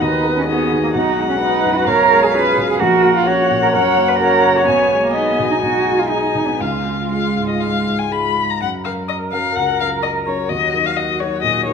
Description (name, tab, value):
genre	quick classical-period movement for piano quartet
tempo	128 BPM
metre	4/4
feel	rubato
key	F# major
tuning	A4 = 441 Hz
part	muted violin	melody	0.0-11.7 s	C#5 to B5	-20 LUFS	left 9 dB	none
part	muted cello	second line	0.0-11.7 s	G#3 to C#5	-18 LUFS	right 4 dB	none
part	dark baby grand piano	accompaniment	0.0-11.7 s	A#1 to A#4	-21 LUFS	left 1 dB	none
part	muted viola	accompaniment	0.0-11.7 s	D#4 to D#5	-21 LUFS	right 2 dB	none
room	wet recital hall reverb, RT60 1.5 s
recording	minimal, uncompressed stereo recording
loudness	-14 LUFS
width	side -6 dB against mid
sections	0.0-8.6 A section; 8.6-11.7 B section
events	none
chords	0.0 B/D#; 0.9 G#m7/B; 1.9 C#7/B; 2.8 F#/A#; 3.7 F#; 4.7 G#m/B; 6.6 C#; 8.6 F#; 10.5 D#m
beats	0.02 0.48 | 0.94 1.40 1.87 2.33 | 2.80 3.27 3.73 4.20 | 4.67 5.14 5.62 6.10 | 6.60 7.11 7.61 8.11 | 8.61 9.08 9.56 10.03 | 10.49 10.97 11.43